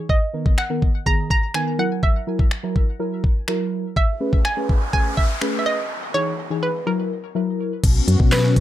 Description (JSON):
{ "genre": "dance-pop", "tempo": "124 BPM", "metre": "4/4", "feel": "straight", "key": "unclear", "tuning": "A4 = 440 Hz", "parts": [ { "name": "hollow square pluck", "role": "melody", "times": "0.1-8.6 s", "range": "A#4 to A#5", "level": "-25 LUFS", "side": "right 2 dB", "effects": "chorus, ping-pong delay" }, { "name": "smooth R&B drum kit", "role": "drums", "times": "0.1-8.6 s", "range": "crash cymbal, finger snaps, handclaps, hi-hat, kick drum, snare drum", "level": "-18 LUFS", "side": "equal", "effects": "none" }, { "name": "deep mellow chord stab", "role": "accompaniment", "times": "0.3-8.6 s", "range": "D#3 to B4", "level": "-24 LUFS", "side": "left 1 dB", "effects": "chorus, sidechain pumping" }, { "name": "noise sweep", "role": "sound effects", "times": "4.2-6.9 s", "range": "none", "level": "-31 LUFS", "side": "equal", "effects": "none" }, { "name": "lush unison pad", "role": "sustained chords", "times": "7.8-8.6 s", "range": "B3 to F#4", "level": "-26 LUFS", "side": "left 6 dB", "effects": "chorus, phaser, sidechain pumping" }, { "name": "solid FM bass", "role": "bass", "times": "7.8-8.6 s", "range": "B1 to B2", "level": "-18 LUFS", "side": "equal", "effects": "sidechain pumping" }, { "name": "tambourine", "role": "percussion", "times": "8.3-8.4 s", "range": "none", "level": "-35 LUFS", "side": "left 7 dB", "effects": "none" } ], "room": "little or no reverb", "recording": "none", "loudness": "-18 LUFS", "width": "side -13 dB against mid", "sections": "0.0-7.8 A section", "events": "noise sweep 4.2-7.8; break 5.9-7.8", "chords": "0.1 Bmaj7; 1.8 F#7; 4.0 Amaj9; 5.9 Emaj7; 6.9 F#7; 7.8 Bsus2" }